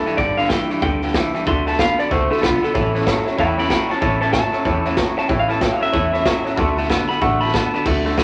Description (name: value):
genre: rockabilly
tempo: 188 BPM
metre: 4/4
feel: swing 62% on 8ths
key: D major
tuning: A4 = 439 Hz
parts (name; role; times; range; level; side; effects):
- electric guitar through a small old amp; melody; 0.0-7.8 s; F4 to C6; -24 LUFS; equal; none
- picked steel-string acoustic guitar; accompaniment; 0.0-8.2 s; A2 to B4; -31 LUFS; equal; none
- twangy electric guitar; riff; 0.0-8.2 s; G2 to B3; -24 LUFS; equal; none
- clear upright piano; accompaniment; 0.1-8.2 s; C#5 to D6; -31 LUFS; equal; none
- upright bass; bass; 0.1-8.2 s; G1 to E2; -28 LUFS; equal; none
- raw garage drum kit; drums; 0.1-8.2 s; crash cymbal, hi-hat, kick drum, snare drum; -24 LUFS; equal; none
room: moderate small room reverb, RT60 0.5 s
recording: none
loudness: -19 LUFS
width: mono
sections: 0.0-7.9 A section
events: clean electric guitar solo 0.0-7.9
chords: 0.0 G; 1.5 D; 2.7 A; 6.6 D